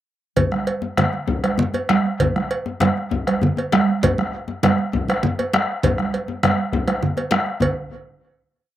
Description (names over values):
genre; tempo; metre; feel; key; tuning
west african traditional, West African drum ensemble; 133 BPM (dotted quarters); 12/8; straight; none; none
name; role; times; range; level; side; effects
bombo; percussion; 0.4-7.8 s; none; -23 LUFS; left 2 dB; slapback echo
congas; percussion; 0.4-7.7 s; none; -22 LUFS; right 4 dB; none
cowbell; percussion; 0.4-7.8 s; none; -25 LUFS; right 2 dB; none
djembe; percussion; 0.4-7.7 s; none; -24 LUFS; left 5 dB; none
room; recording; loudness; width
light reverb; recorded outdoors, with no room sound; -18 LUFS; side -12 dB against mid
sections
0.4-7.6 A section; 7.6-8.8 final hit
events
speeding up 0.4-8.8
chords
none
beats
| 0.36 0.82 1.28 1.74 | 2.20 2.66 3.12 3.58 | 4.03 4.48 4.94 5.39 | 5.83 6.28 6.72 7.17 | 7.61